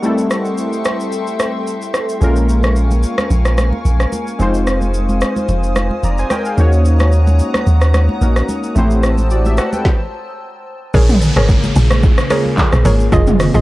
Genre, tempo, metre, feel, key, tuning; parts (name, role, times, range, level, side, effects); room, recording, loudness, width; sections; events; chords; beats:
amapiano; 110 BPM; 4/4; swing 55% on 16ths; Bb minor; A4 = 441 Hz
warm analog keys; accompaniment; 0.0-10.0 s; G3 to Bb5; -19 LUFS; left 1 dB; chorus
glassy FM pad; sustained chords; 0.0-13.6 s; Db3 to E6; -23 LUFS; left 1 dB; ensemble chorus, built-in reverb, sidechain pumping
deep house drum kit; drums; 0.0-13.6 s; handclaps, hi-hat, kick drum, rim click, shaker, snare drum, toms; -17 LUFS; equal; vintage 12-bit sampler grit
punchy sub bass; bass; 2.2-9.6 s; F1 to Eb2; -13 LUFS; equal
congas; percussion; 2.2-13.6 s; -24 LUFS; right 1 dB
hollow square pluck; stabs; 10.9-13.6 s; F4 to Eb5; -19 LUFS; equal; chorus, tape echo
woody log drum bass; bass; 10.9-13.6 s; F1 to Bb1; -14 LUFS; equal
downlifter; sound effects; 10.9-13.6 s; -26 LUFS; equal
little or no reverb; dry, gritty hardware recording, cassette tape; -12 LUFS; side -18 dB against mid
0.0-10.9 A section; 10.9-13.6 B section
stop 9.9-10.9; drop 10.9-13.6
0.0 Am7; 2.2 Bbm7; 4.4 Fm7; 6.6 Ebm7; 8.8 Am7; 10.9 Bbm7
| 0.03 0.58 1.12 1.67 | 2.21 2.76 3.31 3.85 | 4.40 4.94 5.49 6.03 | 6.58 7.12 7.67 8.21 | 8.76 9.30 9.85 10.40 | 10.94 11.49 12.03 12.58 | 13.12